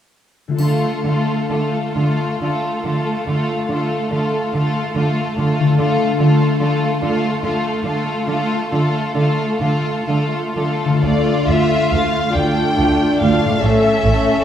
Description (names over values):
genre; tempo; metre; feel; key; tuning
classical, slow romantic movement for symphony orchestra; 39-50 BPM (dotted quarters); 6/8; rubato; D minor; A4 = 441 Hz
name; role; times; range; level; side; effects
concert harp; arpeggios; 0.5-14.4 s; A2 to A4; -21 LUFS; left 4 dB; none
rich studio violin section; melody; 0.6-14.4 s; A4 to G5; -24 LUFS; left 1 dB; none
rich studio violin section; second line; 0.6-14.4 s; C#4 to F4; -22 LUFS; left 1 dB; none
dark studio viola section; accompaniment; 0.6-14.4 s; A3 to A4; -22 LUFS; right 1 dB; none
warm symphonic cello section; bass; 0.6-14.1 s; D2 to D3; -21 LUFS; right 1 dB; none
triangle; percussion; 0.6-2.4 s; none; -40 LUFS; left 3 dB; none
warm studio double bass section; bass; 11.0-14.1 s; A1 to D2; -22 LUFS; right 2 dB; none
room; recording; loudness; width
wet scoring stage reverb, RT60 1.6 s; heard from further back in the room; -15 LUFS; side -10 dB against mid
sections
0.6-11.0 A section; 11.0-14.4 B section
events
none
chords
0.6 Dm; 13.6 A